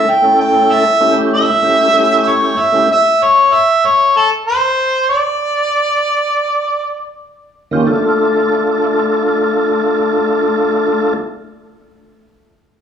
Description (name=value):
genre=blues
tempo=96 BPM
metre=4/4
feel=swing 53% on 16ths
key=D harmonic minor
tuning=A4 = 440 Hz
part: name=warm harmonica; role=melody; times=0.0-7.2 s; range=A4 to G5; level=-11 LUFS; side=equal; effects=overdrive, plate reverb, slapback echo
part: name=tonewheel organ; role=accompaniment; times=0.0-2.9, 7.7-11.1 s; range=Eb3 to A4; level=-14 LUFS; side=equal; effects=slow rotary speaker, overdrive, chorus vibrato, plate reverb, slapback echo
room=moderate club reverb, RT60 0.6 s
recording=live gig heard through the venue's PA, club reverb, studio reverb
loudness=-11 LUFS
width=side -8 dB against mid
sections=0.0-7.9 A section; 7.9-10.4 B section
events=none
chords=0.0 A7; 2.9 N.C.; 7.3 Eb7; 7.9 Dm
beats=| 0.39 1.01 1.64 2.26 | 2.89 3.51 4.13 4.76 | 5.38 6.01 6.63 7.26 | 7.88 8.51 9.13 9.75